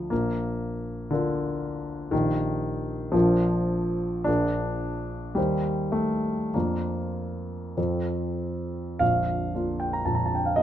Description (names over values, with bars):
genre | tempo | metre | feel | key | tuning
classical, romantic character piece for solo piano | 46-60 BPM | 2/4 | rubato | Bb major | A4 = 440 Hz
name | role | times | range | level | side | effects
warm grand piano | solo | 0.0-10.6 s | Bb0 to Bb5 | -24 LUFS | equal | none
room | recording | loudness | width
light reverb | minimal, uncompressed stereo recording | -24 LUFS | side -11 dB against mid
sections
0.0-9.0 A section; 9.0-10.6 B section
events
none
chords
0.1 Bb; 2.1 Eb/Bb; 3.1 Bb; 4.3 Bb7; 5.4 Eb6; 6.5 Bb/F; 7.8 F; 9.0 Bb